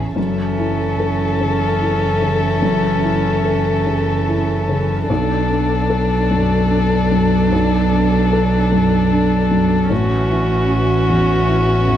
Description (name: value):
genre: neoclassical piano and strings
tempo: 50 BPM (dotted quarters)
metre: 6/8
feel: rubato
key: F# minor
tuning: A4 = 442 Hz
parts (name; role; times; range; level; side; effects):
- felt-muted upright piano; accompaniment; 0.0-12.0 s; A1 to A4; -21 LUFS; left 2 dB; none
- warm chamber string section; sustained chords; 0.0-12.0 s; C#4 to E5; -29 LUFS; right 2 dB; none
- rich double bass; bass; 0.0-12.0 s; F#1 to B1; -20 LUFS; equal; none
- dark violin; melody; 0.2-12.0 s; F#4 to A4; -20 LUFS; left 4 dB; tape echo
- warm cello; second line; 0.2-12.0 s; E3 to F#3; -21 LUFS; right 4 dB; none
- warm viola; accompaniment; 0.2-12.0 s; C#4 to D4; -25 LUFS; right 7 dB; none
room: light reverb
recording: none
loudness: -14 LUFS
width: side -10 dB against mid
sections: 0.2-12.0 A section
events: none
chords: 0.2 F#m7; 5.1 Bm7; 9.9 F#m7/A